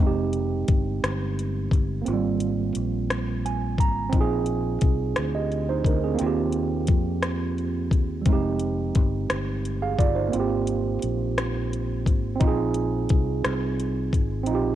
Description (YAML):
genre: slow six-eight R&B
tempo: 58 BPM (dotted quarters)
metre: 6/8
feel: straight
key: unclear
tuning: A4 = 440 Hz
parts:
  - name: tine electric piano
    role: accompaniment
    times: 0.0-14.8 s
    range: G3 to Bb5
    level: -26 LUFS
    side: right 6 dB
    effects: medium stereo tremolo, cassette tape
  - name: fingered electric bass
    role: bass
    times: 0.0-14.8 s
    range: F1 to F2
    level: -28 LUFS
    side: left 2 dB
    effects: none
  - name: smooth R&B drum kit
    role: drums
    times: 0.3-14.6 s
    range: hi-hat, kick drum, rim click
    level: -23 LUFS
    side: left 2 dB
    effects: cassette tape
room: light reverb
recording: home recording on cassette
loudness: -22 LUFS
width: side -12 dB against mid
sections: 0.0-14.8 A section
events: tine electric piano fill 3.1-4.1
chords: 0.0 Fm9; 2.1 Abmaj13; 4.1 Bb7sus4; 6.2 Eb6; 8.3 Fm9; 10.3 Abmaj13